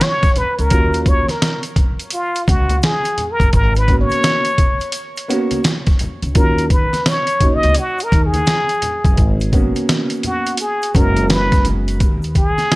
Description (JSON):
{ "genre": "hip hop, jazz-hop", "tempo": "85 BPM", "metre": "4/4", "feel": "swing 64% on 16ths", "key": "G# dorian", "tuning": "A4 = 442 Hz", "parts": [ { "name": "trumpet with plunger mute", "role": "melody", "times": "0.0-12.8 s", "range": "E#4 to D#5", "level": "-19 LUFS", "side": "equal", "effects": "tape echo" }, { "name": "trip hop sampler-style drum kit", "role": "drums", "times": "0.0-12.8 s", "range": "hi-hat, kick drum, snare drum", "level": "-16 LUFS", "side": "equal", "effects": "none" }, { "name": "egg shaker and congas", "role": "percussion", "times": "0.0-12.8 s", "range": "none", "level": "-32 LUFS", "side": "left 2 dB", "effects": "none" }, { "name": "upright bass", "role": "bass", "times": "0.6-12.5 s", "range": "F#1 to D#2", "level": "-18 LUFS", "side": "equal", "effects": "none" }, { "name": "dark grand piano", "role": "accompaniment", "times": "0.7-12.8 s", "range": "F#3 to F#4", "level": "-21 LUFS", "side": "right 1 dB", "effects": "none" } ], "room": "small room reverb", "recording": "dark, warm production", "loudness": "-14 LUFS", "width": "side -21 dB against mid", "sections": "0.0-12.0 A section", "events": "muted trumpet solo 0.0-12.0", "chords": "0.0 G#madd11 (rootless); 0.7 D#m9; 3.5 G#m11; 6.4 D#m7; 9.2 G#m11; 12.0 N.C." }